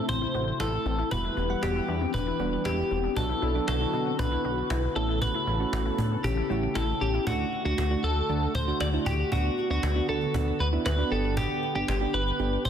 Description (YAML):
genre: synth-pop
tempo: 117 BPM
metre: 4/4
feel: straight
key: D major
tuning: A4 = 440 Hz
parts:
  - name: twelve-string electric guitar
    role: melody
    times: 0.0-12.7 s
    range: F#4 to D5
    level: -30 LUFS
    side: left 1 dB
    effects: ping-pong delay
  - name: warm analog pad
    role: sustained chords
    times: 0.0-12.7 s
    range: C3 to A4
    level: -35 LUFS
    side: equal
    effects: chorus
  - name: warbly dusty pluck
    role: arpeggios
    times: 0.0-7.2 s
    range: C4 to F#4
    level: -34 LUFS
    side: left 8 dB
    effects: chorus, ping-pong delay
  - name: chorused synth bass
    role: bass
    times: 0.1-12.7 s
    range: E1 to B2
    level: -29 LUFS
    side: equal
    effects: none
  - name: cajon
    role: drums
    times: 0.1-12.7 s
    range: none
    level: -36 LUFS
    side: equal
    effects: none
  - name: soft electric-piano-like synth keys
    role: accompaniment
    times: 1.1-12.6 s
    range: F#3 to F#5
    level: -33 LUFS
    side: right 5 dB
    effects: chorus
room: moderate lush hall reverb, RT60 2.2 s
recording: dense, heavily limited modern master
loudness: -25 LUFS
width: side -8 dB against mid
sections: 0.0-7.3 A section; 7.3-12.7 B section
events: none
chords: 0.0 Am; 1.1 Em; 3.2 Bm; 5.0 Aadd9; 7.3 D; 9.3 Bm/D; 11.1 G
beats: 0.09 0.60 | 1.11 1.63 2.14 2.65 | 3.17 3.68 4.19 4.70 | 5.22 5.73 6.24 6.75 | 7.27 7.78 8.29 8.81 | 9.32 9.83 10.35 10.86 | 11.37 11.88 12.40